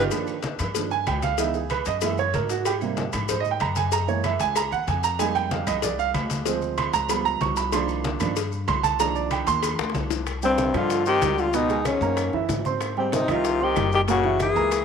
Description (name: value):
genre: Afro-Cuban jazz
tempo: 189 BPM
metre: 4/4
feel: straight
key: C minor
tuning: A4 = 440 Hz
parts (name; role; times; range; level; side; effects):
- breathy alto saxophone; melody; 0.0, 10.4-14.8 s; C4 to G#4; -24 LUFS; left 2 dB; none
- warm baby grand piano; accompaniment; 0.0-14.8 s; A#2 to Db6; -25 LUFS; right 10 dB; none
- upright bass; bass; 0.0-14.8 s; F#1 to G#2; -30 LUFS; left 2 dB; none
- agogo bells and timbales; percussion; 0.1-14.8 s; none; -36 LUFS; right 10 dB; none
- claves; percussion; 0.1-14.8 s; none; -41 LUFS; equal; none
- congas; percussion; 0.1-14.8 s; none; -33 LUFS; left 2 dB; none
- cowbell and bongos; percussion; 0.1-14.8 s; none; -32 LUFS; left 14 dB; none
- maracas; percussion; 0.1-14.8 s; none; -37 LUFS; left 17 dB; none
- brilliant trombone; second line; 10.4-14.8 s; G2 to E3; -28 LUFS; left 13 dB; none
room: light reverb, small room reverb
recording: 1960s-style stereo with parts hard left and right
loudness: -21 LUFS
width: side -6 dB against mid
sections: 0.1-10.3 A section; 10.3-14.8 B section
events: grand piano solo 0.1-10.3; drum fill 9.8-10.3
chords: 0.1 Db69; 1.4 Dbm7; 2.0 F#9; 2.7 Abmaj9; 3.9 F#9; 5.2 Fm11; 6.5 Dm7b5; 7.1 Db7#11; 7.7 Cm11; 10.3 Cmadd9; 11.5 Db5; 12.2 F#9; 12.8 Abmaj7; 14.1 F#9